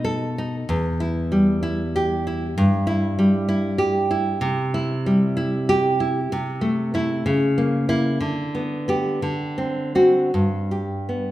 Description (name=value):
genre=romantic piece for solo classical guitar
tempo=52-66 BPM (dotted quarters)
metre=6/8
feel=rubato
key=E minor, G major from 4.4 s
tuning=A4 = 440 Hz
part: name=nylon-string guitar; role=solo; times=0.0-11.3 s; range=E2 to A4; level=-19 LUFS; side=equal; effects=none
room=wet recital hall reverb, RT60 1.8 s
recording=recorded in a church or concert hall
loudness=-19 LUFS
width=side -15 dB against mid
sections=0.0-11.3 A section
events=none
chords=0.0 B7; 0.7 Em; 2.6 Em/G; 4.4 C; 6.3 Am/C; 7.3 C#m6; 8.2 G/D; 9.2 D7; 10.3 G